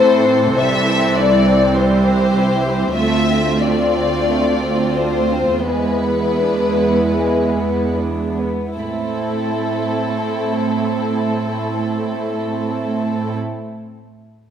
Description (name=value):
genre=classical, slow romantic movement for string orchestra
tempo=36-51 BPM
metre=4/4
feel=rubato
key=A minor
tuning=A4 = 439 Hz
part: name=dark studio violin section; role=melody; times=0.0-13.4 s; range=A4 to E5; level=-20 LUFS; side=left 5 dB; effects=none
part: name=warm chamber violin section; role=second line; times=0.0-13.4 s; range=G3 to A4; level=-23 LUFS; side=equal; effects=none
part: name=dark symphonic viola section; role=accompaniment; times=0.0-13.4 s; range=E3 to C4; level=-21 LUFS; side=right 4 dB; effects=none
part: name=rich symphonic cello section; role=bass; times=0.0-13.4 s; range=C2 to A2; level=-21 LUFS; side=right 2 dB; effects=none
room=wet concert hall reverb, RT60 1.8 s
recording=none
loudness=-15 LUFS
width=side -8 dB against mid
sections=0.0-8.8 A section; 8.8-14.5 B section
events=slowing down 0.0-8.8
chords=0.0 Am; 0.6 C; 3.0 Dm7; 5.7 E7; 8.8 Am